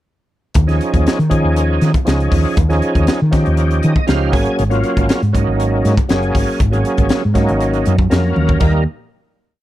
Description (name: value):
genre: electric jazz fusion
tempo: 119 BPM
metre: 4/4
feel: straight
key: unclear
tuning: A4 = 440 Hz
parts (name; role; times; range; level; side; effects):
- crisp fusion drum kit; drums; 0.5-8.7 s; crash cymbal, hi-hat, kick drum, snare drum, toms; -18 LUFS; equal; none
- woody fretless electric bass; bass; 0.6-8.8 s; Gb1 to Eb3; -15 LUFS; equal; lush chorus
- overdriven tonewheel organ; accompaniment; 0.7-8.8 s; F3 to Ab5; -18 LUFS; right 1 dB; chorus vibrato, slow rotary speaker
room: studio ambience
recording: none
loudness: -13 LUFS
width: side -14 dB against mid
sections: 0.6-8.6 groove; 8.6-9.6 final chord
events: tonewheel organ fill 3.6-4.6; drum fill 8.4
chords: 0.6 Eb9sus4; 4.3 Ab9sus4; 8.6 Eb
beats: | 0.56 1.06 1.56 2.07 | 2.57 3.08 3.58 4.08 | 4.59 5.09 5.59 6.10 | 6.60 7.11 7.61 8.11 | 8.61